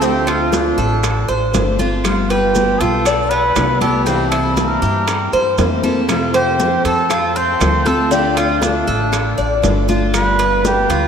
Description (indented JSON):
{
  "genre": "latin, Cuban son and guajira",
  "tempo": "119 BPM",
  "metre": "4/4",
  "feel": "straight",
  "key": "unclear",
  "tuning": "A4 = 435 Hz",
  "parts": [
    { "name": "trumpet with cup mute", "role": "melody", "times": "0.0-11.1 s", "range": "D4 to C5", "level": "-19 LUFS", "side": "equal", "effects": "none" },
    { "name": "picked steel-string acoustic guitar", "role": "accompaniment", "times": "0.0-11.1 s", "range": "C3 to F4", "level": "-21 LUFS", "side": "left 2 dB", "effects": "none" },
    { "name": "Cuban tres", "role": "arpeggios", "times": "0.0-11.1 s", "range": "B3 to D5", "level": "-19 LUFS", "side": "right 1 dB", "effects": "none" },
    { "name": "upright bass", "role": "bass", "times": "0.0-11.1 s", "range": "G1 to G2", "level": "-21 LUFS", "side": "equal", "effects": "none" },
    { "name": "bongos", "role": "percussion", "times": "0.0-10.9 s", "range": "none", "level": "-28 LUFS", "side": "left 3 dB", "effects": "none" },
    { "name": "congas", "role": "percussion", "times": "0.0-11.1 s", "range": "none", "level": "-26 LUFS", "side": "left 2 dB", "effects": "none" },
    { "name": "maracas", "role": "percussion", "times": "0.0-11.1 s", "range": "none", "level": "-33 LUFS", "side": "right 8 dB", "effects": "none" },
    { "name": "claves", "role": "percussion", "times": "0.3-10.4 s", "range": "none", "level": "-35 LUFS", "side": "right 2 dB", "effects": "none" },
    { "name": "timbales", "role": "percussion", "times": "0.3-11.1 s", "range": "none", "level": "-27 LUFS", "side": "right 6 dB", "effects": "none" }
  ],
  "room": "wet cathedral reverb, RT60 4.7 s",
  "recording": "in a vast, echoing space",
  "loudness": "-13 LUFS",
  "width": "side -7 dB against mid",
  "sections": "0.0-11.1 A section",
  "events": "none",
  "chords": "0.0 Dm7; 2.0 G7; 4.1 C7; 6.1 F; 8.1 Dm; 10.1 G7"
}